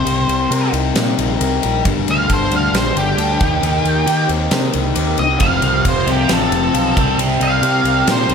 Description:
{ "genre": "quiet-loud alternative rock", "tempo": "135 BPM", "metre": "4/4", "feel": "straight", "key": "unclear", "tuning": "A4 = 440 Hz", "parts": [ { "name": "octave-fuzz lead guitar", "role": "melody", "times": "0.0-8.3 s", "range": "G4 to F5", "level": "-19 LUFS", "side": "right 1 dB", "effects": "distortion" }, { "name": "electric guitar through a small old amp", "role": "arpeggios", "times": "0.0-8.3 s", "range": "F2 to Bb4", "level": "-23 LUFS", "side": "right 2 dB", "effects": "none" }, { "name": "thick fuzz guitar", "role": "riff", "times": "0.0-8.3 s", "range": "F2 to Eb4", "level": "-21 LUFS", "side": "left 12 dB", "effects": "distortion" }, { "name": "fuzz picked electric bass", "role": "bass", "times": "0.1-8.3 s", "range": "F1 to Eb3", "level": "-20 LUFS", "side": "right 1 dB", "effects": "overdrive" }, { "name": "huge arena drum kit", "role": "drums", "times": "0.1-8.3 s", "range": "kick drum, ride cymbal, snare drum", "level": "-21 LUFS", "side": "equal", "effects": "none" }, { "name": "overdriven electric guitar", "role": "riff", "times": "5.4-8.3 s", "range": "F2 to C4", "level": "-21 LUFS", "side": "right 15 dB", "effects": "phaser" } ], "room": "light reverb, studio reverb", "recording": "none", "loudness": "-13 LUFS", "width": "side -6 dB against mid", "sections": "0.0-8.3 A section", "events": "half time 0.0-8.3; lead electric guitar solo 0.0-8.3", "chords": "0.0 Cm7; 1.9 Gmadd9; 3.4 Eb6; 5.4 F; 7.0 Cm7", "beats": "| 0.07 0.51 0.96 1.41 | 1.85 2.30 2.74 3.19 | 3.63 4.08 4.52 4.97 | 5.41 5.86 6.30 6.75 | 7.19 7.63 8.08" }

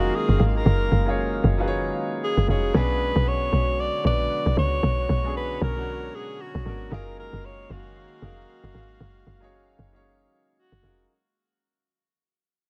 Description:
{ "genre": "amapiano", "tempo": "115 BPM", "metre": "4/4", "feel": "swing 58% on 16ths", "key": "F# major", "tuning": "A4 = 440 Hz", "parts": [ { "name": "breathy alto saxophone", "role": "melody", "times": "0.0-11.1 s", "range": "F#4 to D5", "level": "-31 LUFS", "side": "equal", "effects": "delay" }, { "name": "warm concert grand piano", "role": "accompaniment", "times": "0.0-11.1 s", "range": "B2 to E#5", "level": "-33 LUFS", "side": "equal", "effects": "none" }, { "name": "warm analog pad", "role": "sustained chords", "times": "0.0-11.1 s", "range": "D3 to E#5", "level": "-38 LUFS", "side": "equal", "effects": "chorus" }, { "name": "woody log drum bass", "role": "bass", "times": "0.0-11.1 s", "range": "E#1 to C#2", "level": "-25 LUFS", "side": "equal", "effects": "none" } ], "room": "small room ambience", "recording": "none", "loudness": "-24 LUFS", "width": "mono", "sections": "0.0-11.1 A section", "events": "drop 0.0-11.1; fade-out 0.0-11.1", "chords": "0.0 F#maj13; 2.7 Bm6; 6.9 F#maj13", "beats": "0.14 | 0.66 1.18 1.70 2.22 | 2.75 3.27 3.79 4.31 | 4.83 5.35 5.88 6.40 | 6.92 7.44 7.96 8.48 | 9.01 9.53 10.05 10.57" }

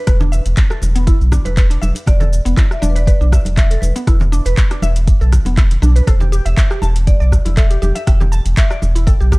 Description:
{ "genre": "afro house", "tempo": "120 BPM", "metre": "4/4", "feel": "swing 54% on 16ths", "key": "E minor", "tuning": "A4 = 441 Hz", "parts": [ { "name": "marimba with medium mallets", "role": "melody", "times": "0.0-9.4 s", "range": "B4 to G5", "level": "-29 LUFS", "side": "equal", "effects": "tape echo" }, { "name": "mallet-like synth pluck", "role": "arpeggios", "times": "0.0-9.4 s", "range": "B3 to A5", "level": "-25 LUFS", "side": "equal", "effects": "lush chorus, sidechain pumping, tape echo" }, { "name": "warm sub bass", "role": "bass", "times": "0.1-9.4 s", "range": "E1 to B1", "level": "-14 LUFS", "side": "equal", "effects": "sidechain pumping" }, { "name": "afro-pop drum kit", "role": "drums", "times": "0.1-9.4 s", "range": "cabasa, handclaps, hi-hat, rim click", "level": "-26 LUFS", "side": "equal", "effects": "studio reverb" }, { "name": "electronic kick drum", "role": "drums", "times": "0.1-9.4 s", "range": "none", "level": "-13 LUFS", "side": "equal", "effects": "studio reverb" }, { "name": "congas", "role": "percussion", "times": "0.1-9.4 s", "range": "none", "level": "-26 LUFS", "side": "right 2 dB", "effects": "none" } ], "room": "digital ambience", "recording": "dry, gritty hardware recording, cassette tape", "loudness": "-11 LUFS", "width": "side -24 dB against mid", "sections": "0.0-9.4 A section", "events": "none", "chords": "0.0 E5; 6.1 Am7/E (rootless)", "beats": "| 0.07 0.57 1.07 1.57 | 2.07 2.57 3.07 3.57 | 4.07 4.57 5.07 5.57 | 6.07 6.57 7.07 7.57 | 8.07 8.57 9.07" }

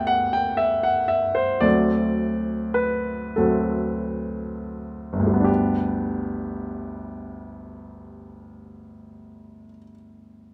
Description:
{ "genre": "classical, romantic nocturne for solo piano", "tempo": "27-40 BPM (dotted quarters)", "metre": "12/8", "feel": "rubato", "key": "G major", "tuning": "A4 = 440 Hz", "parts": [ { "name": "clear baby grand piano", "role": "solo", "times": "0.0-10.5 s", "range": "G1 to G5", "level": "-24 LUFS", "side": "equal", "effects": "none" } ], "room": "light reverb", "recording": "none", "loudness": "-23 LUFS", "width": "mono", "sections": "0.0-5.5 A section; 5.5-10.5 B section", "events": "slowing down 0.0-5.5", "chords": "0.0 G/D; 1.6 D7; 5.5 G", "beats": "0.10 1.64 3.39 | 5.47 7.42 9.34" }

